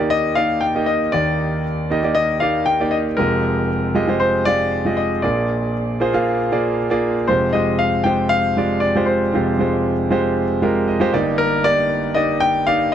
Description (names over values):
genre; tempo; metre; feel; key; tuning
pop; 117 BPM; 4/4; straight; unclear; A4 = 440 Hz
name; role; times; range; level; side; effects
clear baby grand piano; melody; 0.0-12.9 s; Bb4 to G5; -20 LUFS; left 3 dB; tape echo
clear concert grand piano; accompaniment; 0.0-12.9 s; F1 to F5; -18 LUFS; right 1 dB; none
room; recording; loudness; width
small room ambience; dry, close 1970s-style studio recording; -16 LUFS; side -9 dB against mid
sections
0.0-7.3 A section; 7.3-12.9 B section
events
grand piano fill 10.6-11.4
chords
0.0 Ebmaj7; 3.2 Fm9; 5.2 Bb7; 7.3 Fmadd9; 11.1 Ebmaj7/G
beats
0.11 0.62 | 1.14 1.65 2.16 2.67 | 3.19 3.70 4.21 4.73 | 5.24 5.75 6.26 6.78 | 7.29 7.80 8.32 8.83 | 9.34 9.86 10.37 10.88 | 11.39 11.91 12.42 12.93